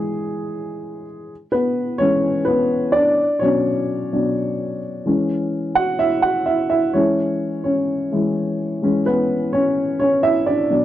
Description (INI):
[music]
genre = pop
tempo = 128 BPM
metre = 4/4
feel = straight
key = E mixolydian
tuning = A4 = 440 Hz
[part]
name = dark upright piano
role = solo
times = 0.0-10.8 s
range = B2 to F#5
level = -17 LUFS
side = equal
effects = none
[sound]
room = light reverb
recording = dry, close 1970s-style studio recording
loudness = -17 LUFS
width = side -12 dB against mid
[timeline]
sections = 0.0-10.8 A section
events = upright piano solo 0.0-10.8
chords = 0.0 E; 1.3 E6; 3.2 Bmadd9; 5.1 E6; 6.9 C#m/E; 8.8 E6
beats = 0.36 0.83 | 1.30 1.78 2.25 2.72 | 3.19 3.66 4.13 4.60 | 5.07 5.54 6.01 6.48 | 6.95 7.42 7.89 8.36 | 8.83 9.30 9.77 10.24 | 10.71